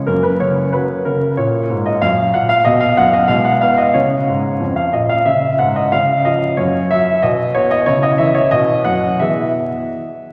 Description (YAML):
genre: classical-period piano sonatina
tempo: 92 BPM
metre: 2/4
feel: rubato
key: F# major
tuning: A4 = 436 Hz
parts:
  - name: warm baby grand piano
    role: solo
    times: 0.0-10.2 s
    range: E#2 to F#5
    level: -15 LUFS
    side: equal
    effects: none
room: wet church reverb, RT60 2.6 s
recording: vinyl crackle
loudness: -15 LUFS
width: mono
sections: 0.1-10.3 A section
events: none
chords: 0.1 F#; 2.7 B5; 3.3 G#m/B; 3.9 C#; 5.3 C#m; 5.9 C#; 6.6 F#5; 7.2 N.C.; 7.9 C#m; 8.5 B; 9.2 E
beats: | 0.08 0.73 | 1.38 2.02 | 2.66 3.29 | 3.95 4.61 | 5.28 5.94 | 6.59 7.24 | 7.88 8.53 | 9.20 9.88